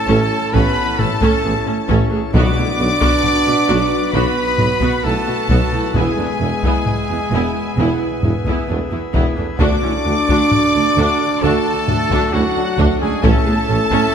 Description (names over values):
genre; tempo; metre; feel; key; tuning
cinematic, epic orchestral film score; 66 BPM; 4/4; straight; B dorian; A4 = 441 Hz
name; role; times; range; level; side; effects
rich symphonic violin section; melody; 0.0-14.1 s; F#5 to D6; -26 LUFS; left 5 dB; none
clear studio violin section; second line; 0.0-14.1 s; F#5 to D6; -26 LUFS; left 1 dB; none
chamber organ, cornet; sustained chords; 0.0-14.1 s; B3 to A5; -26 LUFS; left 2 dB; none
mellow French horn section; sustained chords; 0.0-14.1 s; F#3 to D4; -23 LUFS; equal; none
clear trumpet; stabs; 0.0-14.1 s; F#4 to D5; -22 LUFS; right 1 dB; none
rich studio viola section; accompaniment; 0.1-14.1 s; A3 to A4; -22 LUFS; right 1 dB; none
clear tuba; bass; 0.1-13.8 s; E1 to D2; -24 LUFS; right 2 dB; none
rich symphonic cello section; bass; 0.1-14.0 s; D2 to B2; -23 LUFS; right 4 dB; none
rich symphonic double bass section; bass; 0.1-13.8 s; E1 to D2; -24 LUFS; right 2 dB; none
taiko ensemble; drums; 0.5-14.1 s; none; -20 LUFS; left 1 dB; none
timpani; percussion; 2.3-3.7 s; B2; -24 LUFS; left 2 dB; none
room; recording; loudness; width
moderate scoring stage reverb, RT60 1.9 s; none; -14 LUFS; side -8 dB against mid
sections
0.0-14.1 A section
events
none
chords
0.0 A; 2.3 Bm; 5.9 E; 9.6 D; 13.2 A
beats
0.54 1.44 | 2.34 3.24 4.14 5.04 | 5.95 6.86 7.78 8.69 | 9.60 10.52 11.43 12.33 | 13.24 14.14